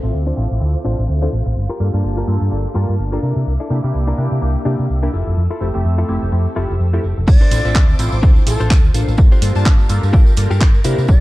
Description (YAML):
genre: filtered disco house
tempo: 126 BPM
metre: 4/4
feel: swing 57% on 16ths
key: unclear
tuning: A4 = 440 Hz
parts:
  - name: funky polysynth comp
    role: accompaniment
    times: 0.0-11.2 s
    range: A3 to A5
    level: -25 LUFS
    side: equal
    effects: chorus, phaser, cassette tape, sidechain pumping, low-pass filter
  - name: string machine, full ensemble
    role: sustained chords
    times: 0.0-11.2 s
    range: Bb3 to E6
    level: -30 LUFS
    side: equal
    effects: phaser, ensemble chorus, sidechain pumping, low-pass filter
  - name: fingered electric bass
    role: bass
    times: 0.0-11.2 s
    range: F1 to C3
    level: -17 LUFS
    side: equal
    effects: tube saturation, sidechain pumping, low-pass filter
  - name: tambourine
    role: percussion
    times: 0.0-11.2 s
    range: none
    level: -34 LUFS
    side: right 8 dB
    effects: sidechain pumping on perc, low-pass filter on perc
  - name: direct-recorded clean electric guitar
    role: riff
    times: 0.1-11.1 s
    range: D4 to C5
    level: -27 LUFS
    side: left 3 dB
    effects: vintage 12-bit sampler grit, sidechain pumping, low-pass filter
  - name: concert flute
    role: melody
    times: 7.3-11.2 s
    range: A4 to D5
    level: -25 LUFS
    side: equal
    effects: sidechain pumping, low-pass filter
  - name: electronic kick drum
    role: drums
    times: 7.3-11.2 s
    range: none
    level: -10 LUFS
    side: equal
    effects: none
  - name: house drum kit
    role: drums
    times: 7.3-11.0 s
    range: crash cymbal, handclaps, hi-hat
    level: -25 LUFS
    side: right 1 dB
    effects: sidechain pumping on hats, low-pass filter on hats, low-pass filter on snare, sidechain pumping on cymbals, low-pass filter on cymbals, low-pass filter on room
room: little or no reverb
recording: dark, warm production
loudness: -13 LUFS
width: side -18 dB against mid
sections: 0.0-7.3 A section; 7.3-11.2 B section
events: filter sweep on drum 0.0-7.3; filter sweep 0.0-7.3; drop 7.3-11.2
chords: 0.0 Dm7; 1.6 Gm7; 3.2 C9; 5.1 Fmaj7; 7.3 Dm7; 9.2 Gm7